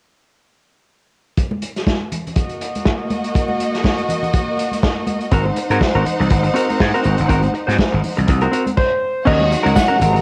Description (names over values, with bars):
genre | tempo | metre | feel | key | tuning
disco | 122 BPM | 4/4 | swing 56% on 16ths | Eb dorian | A4 = 437 Hz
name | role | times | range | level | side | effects
vintage drum kit | drums | 1.4-10.2 s | crash cymbal, hi-hat, kick drum, snare drum | -22 LUFS | equal | cassette tape
congas | percussion | 1.5-10.2 s | none | -29 LUFS | equal | none
clear studio string section | second line | 2.4-10.2 s | Bb3 to Bb5 | -24 LUFS | equal | cassette tape
clean electric guitar | accompaniment | 5.3-10.2 s | C4 to C5 | -23 LUFS | equal | cassette tape
gritty slap bass | bass | 5.3-10.2 s | G1 to Ab2 | -20 LUFS | equal | overdrive
clear concert grand piano | melody | 8.8-10.2 s | C5 to Gb5 | -20 LUFS | equal | cassette tape
clear French horn section | sustained chords | 9.3-10.2 s | C3 to Gb4 | -26 LUFS | equal | cassette tape
tambourine | percussion | 9.5-10.1 s | none | -39 LUFS | equal | none
room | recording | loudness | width
light reverb, small room ambience | home recording on cassette | -18 LUFS | mono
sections
1.4-9.3 A section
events
none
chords
1.4 Ebm; 5.3 Ab9; 9.3 Ebm7